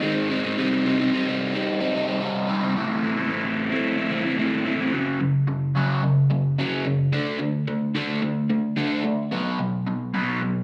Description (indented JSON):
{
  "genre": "rock",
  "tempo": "110 BPM",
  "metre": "4/4",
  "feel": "straight",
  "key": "unclear",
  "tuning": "A4 = 440 Hz",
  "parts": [
    { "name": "crunchy overdriven guitar", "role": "solo", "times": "0.0-10.6 s", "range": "F#2 to E4", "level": "-24 LUFS", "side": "equal", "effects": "phaser, slapback echo" }
  ],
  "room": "light reverb",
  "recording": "live gig heard through the venue's PA, club reverb",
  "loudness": "-24 LUFS",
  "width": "mono",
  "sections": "0.0-4.9 A section; 4.9-10.6 B section",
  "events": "none",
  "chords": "0.0 G#; 0.6 Cm; 2.7 Am; 4.9 F#5; 7.1 D5; 9.3 B5",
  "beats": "0.01 | 0.56 1.10 1.65 2.20 | 2.75 3.29 3.84 4.39 | 4.94 5.49 6.03 6.58 | 7.13 7.68 8.23 8.78 | 9.32 9.87 10.42"
}